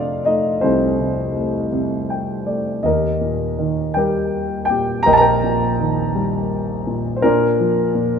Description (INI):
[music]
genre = classical, lyrical solo piano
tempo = 55 BPM (dotted quarters)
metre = 6/8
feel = rubato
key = unclear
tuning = A4 = 440 Hz
[part]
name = dark concert grand piano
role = solo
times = 0.0-8.2 s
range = Bb1 to Bb5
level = -16 LUFS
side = equal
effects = none
[sound]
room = moderate huge ambient reverb, RT60 4.3 s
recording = none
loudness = -16 LUFS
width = side -7 dB against mid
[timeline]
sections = 0.0-8.2 A section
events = grand piano fill 1.7-2.8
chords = 0.0 F7; 2.8 Eb; 7.2 Bb